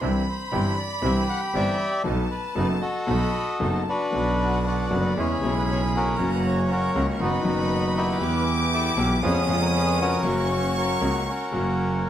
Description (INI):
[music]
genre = tango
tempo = 117 BPM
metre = 4/4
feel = rubato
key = B minor from 4.1 s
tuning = A4 = 437 Hz
[part]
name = warm chamber violin section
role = second line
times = 0.0-12.0 s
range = F#5 to D#6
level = -31 LUFS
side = right 1 dB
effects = slapback echo
[part]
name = clear concert grand piano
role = accompaniment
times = 0.0-12.1 s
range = F#1 to A4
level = -28 LUFS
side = left 2 dB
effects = none
[part]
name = bandoneon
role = stabs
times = 0.0-12.1 s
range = F#3 to G4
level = -35 LUFS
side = right 5 dB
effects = none
[part]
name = clear double bass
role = bass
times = 0.0-12.1 s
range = F#1 to E#2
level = -26 LUFS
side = right 2 dB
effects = none
[part]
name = bandoneon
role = melody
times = 0.3-12.1 s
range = B3 to G5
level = -26 LUFS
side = left 2 dB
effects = slapback echo
[sound]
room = light reverb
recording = none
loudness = -21 LUFS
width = side -11 dB against mid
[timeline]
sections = 0.0-4.1 A section; 4.1-12.1 B section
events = none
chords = 0.0 Cadd9; 2.0 B7; 4.1 Bm; 5.2 E6; 6.2 F#; 7.2 B/F#; 8.2 Em; 9.2 C#7/E#; 10.2 F#